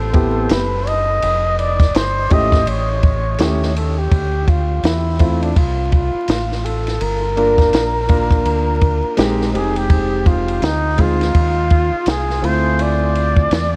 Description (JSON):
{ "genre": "hip hop, jazz-hop", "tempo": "83 BPM", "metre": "4/4", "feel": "swing 61% on 16ths", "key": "D minor from 4.1 s", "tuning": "A4 = 440 Hz", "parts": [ { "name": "breathy flugelhorn", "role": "melody", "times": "0.0-13.8 s", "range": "D4 to Eb5", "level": "-22 LUFS", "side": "equal", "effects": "none" }, { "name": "deep dub fingered electric bass", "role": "bass", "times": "0.0-13.8 s", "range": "F1 to E2", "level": "-23 LUFS", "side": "equal", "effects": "none" }, { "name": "dark grand piano", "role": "accompaniment", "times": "0.1-13.6 s", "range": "G#3 to Bb4", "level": "-24 LUFS", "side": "equal", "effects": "none" }, { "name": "compact cocktail drum kit", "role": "drums", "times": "0.1-13.7 s", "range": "hi-hat, kick drum, ride cymbal, snare drum", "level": "-20 LUFS", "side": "equal", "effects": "none" } ], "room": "moderate huge ambient reverb, RT60 5.1 s", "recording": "dreamy mix soaked in reverb, vinyl crackle", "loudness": "-16 LUFS", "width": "mono", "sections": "0.0-4.1 A section; 4.1-13.8 B section", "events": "none", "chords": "0.0 Am9; 1.2 Fmadd9; 2.7 A7; 4.1 Dm9; 7.0 Gm7; 9.5 Fm9; 12.4 Dm9", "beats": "0.50 | 1.22 1.95 2.67 3.39 | 4.12 4.84 5.56 6.28 | 7.01 7.73 8.45 9.18 | 9.90 10.62 11.34 12.07 | 12.79 13.51" }